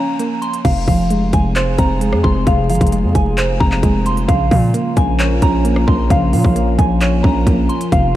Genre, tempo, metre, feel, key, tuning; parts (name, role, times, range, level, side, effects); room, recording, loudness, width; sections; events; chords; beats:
hip hop, trap; 132 BPM; 4/4; half-time; F minor; A4 = 440 Hz
soft synth bell; melody; 0.0-8.1 s; F5 to C6; -21 LUFS; equal; chorus, phaser, low-pass filter, tape echo
soft round pluck; accompaniment; 0.0-8.2 s; C3 to Db5; -19 LUFS; right 2 dB; chorus, low-pass filter
trap drum kit; drums; 0.2-8.0 s; crash cymbal, handclaps, hi-hat, kick drum, rim click; -18 LUFS; equal; overdrive
dark analog pad; sustained chords; 0.6-8.2 s; F3 to Bb4; -22 LUFS; left 1 dB; chorus, phaser
distorted 808-style bass; bass; 0.6-8.1 s; F1 to Bb2; -17 LUFS; equal; distortion
light reverb; vinyl crackle; -12 LUFS; side -14 dB against mid
0.6-8.2 A section
break 0.0-0.6
0.0 Bbm; 0.6 Fm; 4.3 Bbm
0.19 | 0.65 1.10 1.56 2.01 | 2.47 2.92 3.38 3.83 | 4.29 4.74 5.19 5.65 | 6.10 6.56 7.01 7.47 | 7.92